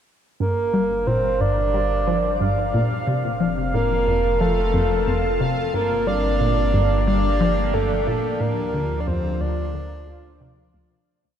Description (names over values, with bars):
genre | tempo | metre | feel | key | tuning
ambient, sequencer-driven space music | 90 BPM | 4/4 | straight | G minor | A4 = 441 Hz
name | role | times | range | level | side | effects
breathy flute-like synth lead | melody | 0.4-10.7 s | A4 to D5 | -23 LUFS | right 1 dB | chorus, shimmer reverb, ping-pong delay
sweeping resonant pad | sustained chords | 0.4-11.1 s | F3 to A5 | -30 LUFS | equal | chorus, shimmer reverb
resonant blip pluck | riff | 0.4-10.9 s | D2 to G3 | -24 LUFS | left 1 dB | phaser, ping-pong delay
round analog bass | bass | 0.4-11.0 s | F1 to D2 | -26 LUFS | equal | none
bubbling stepped-filter texture | texture | 0.4-11.1 s | F5 | -31 LUFS | right 4 dB | chorus, built-in reverb, shimmer reverb
room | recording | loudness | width
moderate huge ambient reverb, RT60 7.6 s | dark, warm production | -19 LUFS | side -9 dB against mid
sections
0.4-11.1 A section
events
fade-in on analog synth pad 0.4-11.1; fade-out 7.5-11.1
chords
0.4 Gm; 3.1 F; 5.7 Gm; 8.4 Dm